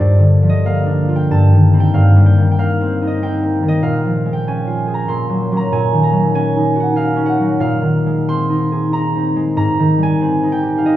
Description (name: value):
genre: classical, solo harp piece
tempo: 94 BPM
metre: 3/4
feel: rubato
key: unclear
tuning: A4 = 441 Hz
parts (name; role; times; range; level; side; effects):
- concert harp; solo; 0.0-11.0 s; G2 to D6; -12 LUFS; equal; none
room: wet recital hall reverb, RT60 1.7 s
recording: heard from further back in the room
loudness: -13 LUFS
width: side -13 dB against mid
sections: 0.0-11.0 A section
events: none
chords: 0.0 Gm7; 1.3 Eb6/G; 3.8 Bbm7; 5.1 Gb/Bb; 5.7 Ebm11/Bb; 7.6 Bb9sus4; 9.6 Abmaj9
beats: 0.65 1.29 | 1.93 2.57 3.20 | 3.83 4.46 5.09 | 5.71 6.34 6.95 | 7.58 8.29 8.93 | 9.57 10.21 10.84